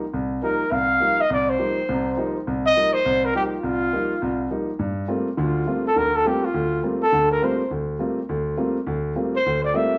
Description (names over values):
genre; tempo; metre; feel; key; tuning
jazz; 206 BPM; 4/4; swing 60% on 8ths; G dorian from 4.8 s; A4 = 440 Hz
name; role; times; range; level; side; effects
warm baby grand piano; accompaniment; 0.0-9.9 s; C2 to F4; -26 LUFS; equal; none
breathy trumpet; melody; 0.4-10.0 s; F4 to F5; -23 LUFS; equal; plate reverb
room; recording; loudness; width
wet studio reverb, RT60 0.7 s; heard from further back in the room, nothing above 7.9 kHz; -22 LUFS; mono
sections
0.0-4.8 A section; 4.8-10.0 B section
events
trumpet solo 4.8-10.0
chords
0.0 F9sus4; 4.8 Gm11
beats
| 0.14 0.43 0.72 1.01 | 1.30 1.59 1.88 2.17 | 2.47 2.76 3.05 3.34 | 3.63 3.92 4.21 4.50 | 4.79 5.09 5.38 5.67 | 5.96 6.25 6.54 6.83 | 7.12 7.42 7.71 8.00 | 8.29 8.58 8.87 9.16 | 9.45 9.74